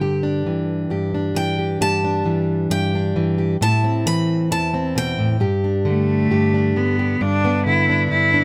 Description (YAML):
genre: acoustic folk duo or small band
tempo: 67 BPM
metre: 4/4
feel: straight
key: G major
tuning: A4 = 440 Hz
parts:
  - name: picked steel-string acoustic guitar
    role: melody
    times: 0.0-6.7 s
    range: G5 to B5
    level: -28 LUFS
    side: equal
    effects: none
  - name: fingerpicked plugged-in steel-string acoustic guitar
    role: accompaniment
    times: 0.0-8.4 s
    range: E2 to G4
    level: -21 LUFS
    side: equal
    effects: none
  - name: bright cello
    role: second line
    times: 5.9-8.4 s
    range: A3 to E4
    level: -20 LUFS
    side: equal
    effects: none
room: light reverb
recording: close, detailed microphones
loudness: -19 LUFS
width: mono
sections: 0.0-7.2 A section; 7.2-8.4 B section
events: cello solo 7.2-8.4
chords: 0.0 Em7/G; 3.6 Am; 5.4 G5; 7.2 G